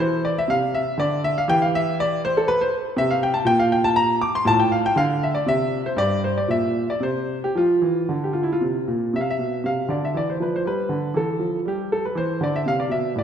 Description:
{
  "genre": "classical, baroque-style suite movement for grand piano",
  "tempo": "120 BPM",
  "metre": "3/4",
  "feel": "rubato",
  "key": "F major, C major from 9.1 s",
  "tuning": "A4 = 440 Hz",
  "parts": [
    { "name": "clear concert grand piano", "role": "solo", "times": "0.0-13.2 s", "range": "G2 to D6", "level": "-19 LUFS", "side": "equal", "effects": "none" }
  ],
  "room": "wet scoring stage reverb, RT60 1.9 s",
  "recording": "recorded in a church or concert hall, faint mains hum",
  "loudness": "-19 LUFS",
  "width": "side -8 dB against mid",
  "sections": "0.0-9.1 A section; 9.1-13.2 A section",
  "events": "none",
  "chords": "0.0 C; 1.5 Em7; 3.0 C5; 4.5 F/A; 6.0 Gm; 7.0 N.C.; 7.5 F5; 9.1 C; 10.7 G; 12.2 C"
}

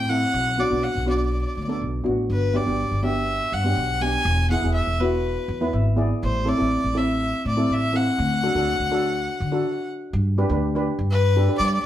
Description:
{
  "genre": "calypso",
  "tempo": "122 BPM",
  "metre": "4/4",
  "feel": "straight",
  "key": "G major",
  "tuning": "A4 = 439 Hz",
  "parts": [
    { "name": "rich violin", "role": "melody", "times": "0.0-11.9 s", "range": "B4 to Ab5", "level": "-25 LUFS", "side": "left 2 dB", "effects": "none" },
    { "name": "upright bass", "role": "bass", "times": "0.0-11.8 s", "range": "E1 to G3", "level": "-24 LUFS", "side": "equal", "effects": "none" },
    { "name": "steel pan", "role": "accompaniment", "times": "0.1-11.7 s", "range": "B3 to E5", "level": "-25 LUFS", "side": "equal", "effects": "none" }
  ],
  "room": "wet studio reverb, RT60 0.6 s",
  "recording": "heard from further back in the room",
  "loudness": "-20 LUFS",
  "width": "side -12 dB against mid",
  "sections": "0.0-10.1 A section; 10.1-11.9 B section",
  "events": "steel pan fill 5.5-6.2; stop 9.6-10.1",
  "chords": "0.3 Bm7; 2.3 Gmaj7; 4.3 E; 6.2 Am; 8.2 D; 10.1 G"
}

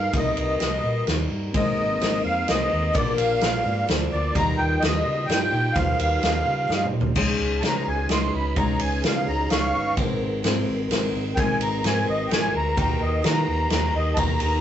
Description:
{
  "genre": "folk rock and heartland rock",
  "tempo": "128 BPM",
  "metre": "3/4",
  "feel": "straight",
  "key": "unclear",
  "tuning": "A4 = 440 Hz",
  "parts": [
    { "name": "musette accordion", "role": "melody", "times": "0.0-14.6 s", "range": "D5 to Db6", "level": "-25 LUFS", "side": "equal", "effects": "none" },
    { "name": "picked steel-string acoustic guitar", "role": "accompaniment", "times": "0.0-14.6 s", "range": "Bb2 to Bb4", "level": "-28 LUFS", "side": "left 3 dB", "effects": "none" },
    { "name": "hollow-body short-scale fingered electric bass", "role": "bass", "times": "0.0-14.6 s", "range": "G1 to Eb3", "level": "-27 LUFS", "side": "equal", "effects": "none" },
    { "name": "unplugged drum kit", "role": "drums", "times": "0.1-14.5 s", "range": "crash cymbal, kick drum, ride cymbal, snare drum, toms", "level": "-26 LUFS", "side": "equal", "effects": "none" },
    { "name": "bright concert grand piano", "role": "accompaniment", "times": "1.5-14.5 s", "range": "C4 to F5", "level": "-37 LUFS", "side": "right 3 dB", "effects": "none" },
    { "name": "mellow tonewheel organ", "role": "sustained chords", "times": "1.5-14.6 s", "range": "Bb3 to Eb5", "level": "-34 LUFS", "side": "right 1 dB", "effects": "none" }
  ],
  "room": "moderate small room reverb, RT60 0.5 s",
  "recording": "rough rehearsal-room recording, nothing above 8.0 kHz",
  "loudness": "-20 LUFS",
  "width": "side -10 dB against mid",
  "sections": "0.0-7.2 A section; 7.2-14.6 B section",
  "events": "drum fill 6.7-7.2; accordion solo 7.2-14.6",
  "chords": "0.0 Cm7; 1.5 Abadd9; 2.9 Bb; 4.4 Ebadd9; 7.2 Dbsus2; 10.0 Abadd9; 12.8 Eb"
}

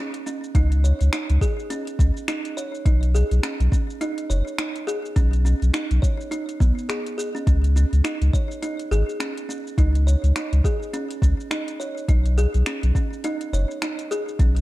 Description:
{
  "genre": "organic downtempo",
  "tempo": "104 BPM",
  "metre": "4/4",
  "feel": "swing 59% on 16ths",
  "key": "unclear",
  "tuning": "A4 = 440 Hz",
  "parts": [
    { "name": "kalimba", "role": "arpeggios", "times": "0.0-14.6 s", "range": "B3 to C#5", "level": "-28 LUFS", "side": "right 1 dB", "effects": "ping-pong delay" },
    { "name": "organic electronic drum kit", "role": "drums", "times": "0.1-14.6 s", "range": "finger snaps, hi-hat, shaker", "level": "-32 LUFS", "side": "equal", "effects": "overdrive" },
    { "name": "warm sub bass", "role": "bass", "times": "0.5-14.6 s", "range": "F#1 to C#2", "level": "-18 LUFS", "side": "equal", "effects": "sidechain pumping" },
    { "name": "electronic kick drum", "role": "drums", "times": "0.5-14.5 s", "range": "none", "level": "-20 LUFS", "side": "equal", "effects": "overdrive" }
  ],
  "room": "little or no reverb",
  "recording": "dark, warm production",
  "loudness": "-20 LUFS",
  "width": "side -17 dB against mid",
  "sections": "0.0-14.6 A section",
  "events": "none",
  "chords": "0.0 C#5; 2.9 B; 7.5 C#5; 12.1 B"
}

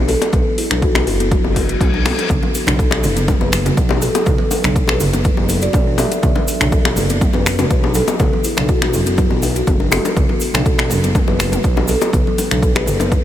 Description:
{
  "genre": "afro house",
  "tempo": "122 BPM",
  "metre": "4/4",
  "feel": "straight",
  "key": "B minor",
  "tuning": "A4 = 440 Hz",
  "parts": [
    { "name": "buzzing kalimba", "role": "arpeggios", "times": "0.0-13.2 s", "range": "F#3 to A4", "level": "-22 LUFS", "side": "equal", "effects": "sidechain pumping, analog delay" },
    { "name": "smooth gliding synth bass", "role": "bass", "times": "0.0-13.2 s", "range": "F#1 to B1", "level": "-20 LUFS", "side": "equal", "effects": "tube saturation, sidechain pumping" },
    { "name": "kalimba", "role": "melody", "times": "0.1-13.0 s", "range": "E4 to E5", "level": "-24 LUFS", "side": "equal", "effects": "analog delay" },
    { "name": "deep house drum kit", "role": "drums", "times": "0.1-13.2 s", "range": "finger snaps, hi-hat, toms", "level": "-22 LUFS", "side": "left 1 dB", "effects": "overdrive" },
    { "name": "bongos", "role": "percussion", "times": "0.1-13.1 s", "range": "none", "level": "-23 LUFS", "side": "left 5 dB", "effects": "none" },
    { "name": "electronic kick drum", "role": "drums", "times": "0.3-13.2 s", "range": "none", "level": "-17 LUFS", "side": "equal", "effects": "overdrive" },
    { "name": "reverse cymbal", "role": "sound effects", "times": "1.5-2.3 s", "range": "none", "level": "-29 LUFS", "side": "left 5 dB", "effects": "none" },
    { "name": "cabasa", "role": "percussion", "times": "2.3-13.2 s", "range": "none", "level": "-30 LUFS", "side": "right 3 dB", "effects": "none" },
    { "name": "congas", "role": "percussion", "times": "2.3-13.1 s", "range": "none", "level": "-25 LUFS", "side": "right 4 dB", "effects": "none" }
  ],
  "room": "light reverb, studio reverb",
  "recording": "none",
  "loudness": "-13 LUFS",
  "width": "side -12 dB against mid",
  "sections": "0.0-13.2 A section",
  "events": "reverse cymbal 1.5-2.3",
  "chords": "0.0 B7(no3)"
}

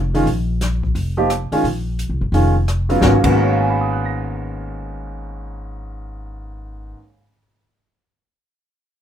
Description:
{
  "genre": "modal jazz",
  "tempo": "175 BPM",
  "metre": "4/4",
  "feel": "swing 64% on 8ths",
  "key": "G# dorian",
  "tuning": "A4 = 441 Hz",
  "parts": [
    { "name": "upright bass", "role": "bass", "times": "0.0-6.9 s", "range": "E#1 to B#1", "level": "-21 LUFS", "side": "left 1 dB", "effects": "none" },
    { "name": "warm baby grand piano", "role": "accompaniment", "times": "0.1-7.6 s", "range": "G#2 to A#6", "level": "-19 LUFS", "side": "right 1 dB", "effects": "none" },
    { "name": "open jazz drum kit", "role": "drums", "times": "0.1-3.3 s", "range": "crash cymbal, hi-hat, kick drum, rim click, snare drum", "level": "-25 LUFS", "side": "left 2 dB", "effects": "none" }
  ],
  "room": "light reverb",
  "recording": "minimal, uncompressed stereo recording",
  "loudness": "-16 LUFS",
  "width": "side -9 dB against mid",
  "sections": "0.0-3.0 A section; 3.0-5.8 B section",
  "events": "none",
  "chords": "0.0 A#m11; 3.0 G#m11"
}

